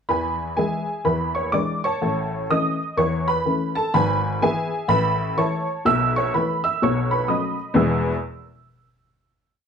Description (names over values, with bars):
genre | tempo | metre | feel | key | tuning
jazz, stride piano | 125 BPM | 4/4 | swing 63% on 8ths | E major | A4 = 437 Hz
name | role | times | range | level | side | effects
honky-tonk upright piano | solo | 0.1-8.1 s | G#1 to E6 | -20 LUFS | equal | none
room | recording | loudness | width
moderate studio reverb, RT60 0.8 s | dark, warm production | -20 LUFS | side -7 dB against mid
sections
0.1-7.8 A section; 7.8-9.7 final chord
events
none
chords
0.1 E; 1.0 E7; 2.0 A; 3.9 E/G#; 4.9 A; 5.9 B7sus4; 6.8 B9; 7.8 E